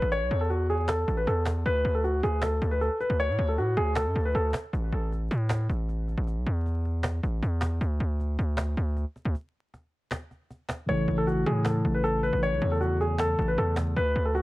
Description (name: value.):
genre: hip hop, trap.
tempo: 156 BPM.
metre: 4/4.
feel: half-time.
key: A major.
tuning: A4 = 441 Hz.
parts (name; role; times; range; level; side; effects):
dark concert grand piano; melody; 0.0-4.5, 10.9-14.4 s; F#4 to C#5; -28 LUFS; equal; low-pass filter, tape echo.
distorted 808-style bass; bass; 0.0-14.4 s; A1 to A2; -27 LUFS; equal; distortion.
cajon; drums; 0.1-14.4 s; none; -34 LUFS; equal; none.
mellow tine electric piano; accompaniment; 10.9-14.0 s; C#3 to A4; -29 LUFS; equal; lush chorus, low-pass filter.
room: little or no reverb.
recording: vinyl crackle.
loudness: -25 LUFS.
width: side -18 dB against mid.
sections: 0.0-14.4 A section.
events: break 4.7-10.9.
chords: 0.0 A5; 1.7 D5; 4.7 A5; 7.8 N.C.; 10.9 A.